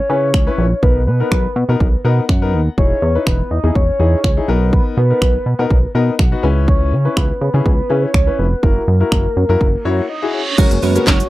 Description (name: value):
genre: dance-pop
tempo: 123 BPM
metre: 4/4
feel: straight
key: B major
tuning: A4 = 440 Hz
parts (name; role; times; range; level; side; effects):
- soft octave-layered synth lead; melody; 0.0-11.3 s; A#4 to D#5; -21 LUFS; equal; chorus, slapback echo
- clear concert grand piano; accompaniment; 0.1-11.1 s; B3 to G#5; -22 LUFS; left 5 dB; sidechain pumping
- chorused synth bass; bass; 0.1-11.2 s; E1 to C#3; -16 LUFS; equal; sidechain pumping
- house drum kit; drums; 0.3-11.3 s; crash cymbal, finger snaps, handclaps, hi-hat, kick drum, shaker, snare drum; -15 LUFS; equal; none
- reverse cymbal; sound effects; 10.0-10.6 s; none; -23 LUFS; right 5 dB; none
- warm analog pad; sustained chords; 10.6-11.3 s; C#3 to F#4; -23 LUFS; right 2 dB; chorus, sidechain pumping
- clean electric guitar; riff; 10.6-11.2 s; G#3 to A#4; -21 LUFS; right 9 dB; analog chorus
room: little or no reverb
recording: dry, close 1970s-style studio recording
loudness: -13 LUFS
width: side -17 dB against mid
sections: 0.0-10.6 A section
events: grand piano fill 1.8-2.8, 5.7-6.7; reverse cymbal 10.0-10.6; break 10.1-10.6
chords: 0.0 C#m7; 0.8 Bmaj7; 2.8 Emaj7; 4.5 Bmaj7; 6.4 C#m7; 8.6 F#7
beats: 0.34 | 0.83 1.31 1.80 2.29 | 2.78 3.27 3.75 4.24 | 4.73 5.22 5.70 6.19 | 6.68 7.17 7.66 8.14 | 8.63 9.12 9.61 10.09 | 10.58 11.07